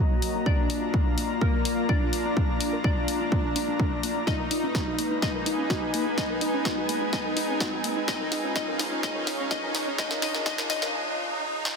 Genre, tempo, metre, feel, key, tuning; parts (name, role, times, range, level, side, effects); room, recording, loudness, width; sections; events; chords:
melodic techno; 126 BPM; 4/4; straight; A4 = 440 Hz
soft supersaw; melody; 0.0-10.9 s; Gb3 to Eb4; -32 LUFS; left 1 dB; sidechain pumping, dub echo
glassy wavetable pluck; second line; 0.0-10.9 s; Gb4 to Eb5; -36 LUFS; left 4 dB; chorus, sidechain pumping, ping-pong delay
deep dark ambient pad; sustained chords; 0.1-11.8 s; Ab3 to Eb5; -33 LUFS; left 2 dB; chorus, built-in reverb, sidechain pumping
warbly dusty pluck; arpeggios; 0.0-10.9 s; Bb3 to D5; -36 LUFS; equal; chorus, sidechain pumping, ping-pong delay
riser; sound effects; 0.6-11.8 s; -37 LUFS; right 1 dB
airy breathy pad; texture; 0.0-10.9 s; Eb4 to Bb5; -33 LUFS; equal; chorus, sidechain pumping
house drum kit; drums; 0.2-11.8 s; hi-hat, snare drum; -31 LUFS; left 1 dB; sidechain pumping on hats, high-pass filter on hats, high-pass filter on snare
electronic kick drum; drums; 0.5-10.6 s; -27 LUFS; equal
moderate huge ambient reverb, RT60 5.0 s; dense, heavily limited modern master, high-pass filter; -24 LUFS; side -5 dB against mid
0.0-11.8 A section
build-up 0.0-11.8; filter sweep on synth arpeggio sound 0.0-11.8; filter sweep 0.0-11.8; riser 0.6-11.8; drum fill 4.3-10.9; break 10.9-11.8
0.5 Bb; 4.3 Abm; 8.1 Db